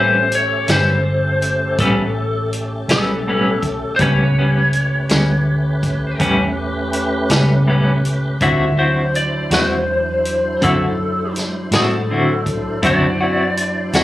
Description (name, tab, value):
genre	slow blues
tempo	54 BPM (dotted quarters)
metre	12/8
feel	straight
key	A mixolydian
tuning	A4 = 439 Hz
part	lightly driven lead guitar	melody	0.0-14.0 s	A4 to E5	-19 LUFS	left 1 dB	none
part	clean electric guitar	accompaniment	0.0-14.0 s	A2 to F#4	-18 LUFS	left 1 dB	tremolo
part	tonewheel organ	sustained chords	0.0-14.0 s	D#3 to C#5	-25 LUFS	right 1 dB	slow rotary speaker, overdrive, chorus vibrato
part	vintage muted fingered electric bass	bass	0.0-14.0 s	G1 to A2	-20 LUFS	equal	none
part	vintage drum kit	drums	0.3-14.0 s	hi-hat, kick drum, snare drum	-22 LUFS	equal	none
room	light reverb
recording	recorded on a phone in the room, club reverb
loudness	-15 LUFS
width	side -15 dB against mid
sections	0.0-14.0 A section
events	none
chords	0.0 A9; 8.4 D9